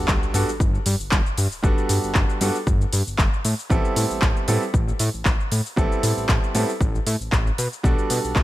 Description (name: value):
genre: nu-disco, nu disco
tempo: 116 BPM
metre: 4/4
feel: swing 54% on 16ths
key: G major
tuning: A4 = 439 Hz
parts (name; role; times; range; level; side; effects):
- bright concert grand piano; accompaniment; 0.0-8.4 s; G3 to A4; -26 LUFS; right 1 dB; ping-pong delay
- fat analog bass; bass; 0.0-8.4 s; G1 to B2; -23 LUFS; equal; none
- sub drop; sound effects; 0.0-1.6 s; none; -35 LUFS; equal; none
- electronic kick drum; drums; 0.1-8.4 s; none; -21 LUFS; equal; overdrive
- house drum kit; drums; 0.1-8.4 s; handclaps, hi-hat, shaker; -26 LUFS; equal; overdrive
room: digital ambience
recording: none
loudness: -19 LUFS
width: side -15 dB against mid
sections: 0.0-8.4 A section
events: impact 0.0-1.6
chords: 0.0 Gmaj7; 3.4 Am7; 7.6 Gmaj7/B